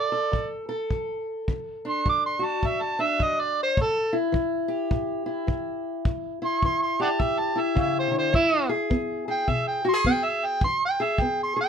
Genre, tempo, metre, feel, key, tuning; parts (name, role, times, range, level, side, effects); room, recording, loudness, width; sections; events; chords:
acoustic country blues, solo or duo; 105 BPM; 4/4; swing 61% on 8ths; A4 = 444 Hz
overdriven harmonica; melody; 0.0-11.7 s; E4 to D6; -24 LUFS; right 2 dB
fingerpicked steel-string acoustic guitar; accompaniment; 0.0-11.7 s; A2 to A4; -27 LUFS; left 2 dB
kick drum; drums; 0.3-11.3 s; -26 LUFS; left 1 dB
light reverb; minimal, uncompressed stereo recording; -23 LUFS; side -7 dB against mid
0.0-11.7 A section
harmonica solo 0.0-11.7
0.0 D; 3.8 A7(no3); 8.3 E